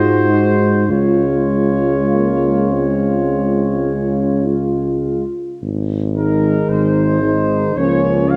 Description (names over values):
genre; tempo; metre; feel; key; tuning
classical, hymn-like piece for brass band; 49-57 BPM; 4/4; rubato; Db major; A4 = 439 Hz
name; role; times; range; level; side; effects
dark trumpet section; melody; 0.0-8.4 s; Bb4 to F5; -24 LUFS; equal; none
warm French horn section; second line; 0.0-8.4 s; Db4 to Gb4; -24 LUFS; equal; none
mellow euphonium; accompaniment; 0.0-8.4 s; Ab3 to F4; -24 LUFS; equal; none
mellow trombone; accompaniment; 0.0-8.4 s; Eb3 to Ab3; -23 LUFS; equal; none
mellow tuba; bass; 0.0-8.4 s; Ab1 to Ab2; -20 LUFS; equal; none
room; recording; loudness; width
moderate scoring stage reverb, RT60 1.9 s; worn, warbling old tape, cassette tape, warbly pitch drift; -16 LUFS; mono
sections
0.0-5.6 A section; 5.6-8.4 B section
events
none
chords
0.0 Ab7; 0.9 Db; 5.6 Ab; 7.8 Bbm/Db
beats
| 0.88 2.10 3.30 4.47 | 5.61 6.69 7.76